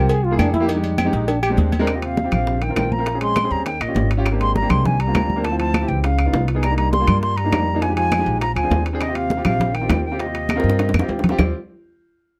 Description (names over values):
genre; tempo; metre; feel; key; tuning
Afro-Cuban jazz; 202 BPM; 4/4; straight; Eb major; A4 = 440 Hz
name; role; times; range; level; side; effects
breathy trombone; second line; 0.0-11.1 s; Bb2 to Ab4; -29 LUFS; equal; none
warm upright piano; accompaniment; 0.0-11.5 s; Ab3 to Bb4; -27 LUFS; equal; none
upright bass; bass; 0.0-11.5 s; Ab1 to G2; -24 LUFS; equal; none
agogo bells and timbales; percussion; 0.1-11.5 s; none; -31 LUFS; equal; none
congas; percussion; 0.1-11.5 s; none; -26 LUFS; equal; none
cowbell and bongos; percussion; 0.1-11.5 s; none; -31 LUFS; equal; none
claves; percussion; 0.4-11.5 s; none; -32 LUFS; equal; none
mellow silver concert flute; melody; 1.9-11.1 s; Eb5 to C6; -26 LUFS; equal; none
room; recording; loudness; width
light reverb; dark, warm production; -19 LUFS; mono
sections
0.0-1.9 A section; 1.9-11.4 B section; 11.4-12.4 C section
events
trombone solo 0.0-1.9; drum fill 10.5-11.4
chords
0.1 C7b13; 0.7 Fm7; 1.3 Bb13; 1.9 Eb69; 3.1 Bbm9; 3.7 Eb7; 4.3 Abmaj9#11; 5.4 Dm7; 6.0 Db9; 6.6 Cm7; 7.8 Fm7; 8.4 Bb9; 9.0 Eb69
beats
0.09 0.39 | 0.68 0.98 1.28 1.58 | 1.87 2.17 2.47 2.77 | 3.06 3.36 3.66 3.96 | 4.25 4.55 4.85 5.15 | 5.44 5.74 6.04 6.33 | 6.63 6.93 7.23 7.52 | 7.82 8.12 8.41 8.71 | 9.01 9.31 9.60 9.90 | 10.20 10.49 10.79 11.09 | 11.39